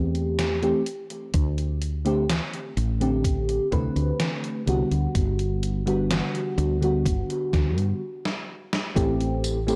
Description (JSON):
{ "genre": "vaporwave", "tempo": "63 BPM", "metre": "4/4", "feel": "straight", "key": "unclear", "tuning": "A4 = 441 Hz", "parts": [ { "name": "mellow FM electric piano", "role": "accompaniment", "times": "0.0-9.8 s", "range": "D3 to B4", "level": "-28 LUFS", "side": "equal", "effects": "lush chorus, tape echo" }, { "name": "woody fretless electric bass", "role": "bass", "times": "0.0-9.8 s", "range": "G1 to G2", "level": "-28 LUFS", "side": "equal", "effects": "none" }, { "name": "gated 80s digital drum machine", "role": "drums", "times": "0.1-9.8 s", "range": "hi-hat, snare drum, tambourine", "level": "-32 LUFS", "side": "equal", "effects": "gated reverb, gated reverb snare" }, { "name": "electronic kick drum", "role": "drums", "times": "1.3-9.2 s", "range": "none", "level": "-28 LUFS", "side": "equal", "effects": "none" } ], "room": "little or no reverb", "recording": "dry, gritty hardware recording", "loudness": "-25 LUFS", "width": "mono", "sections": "0.0-9.0 A section", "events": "stop 8.0-9.0; drum fill 8.2-9.0", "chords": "0.0 Am7; 0.9 D7sus4; 5.2 Gmaj7; 9.0 Am7" }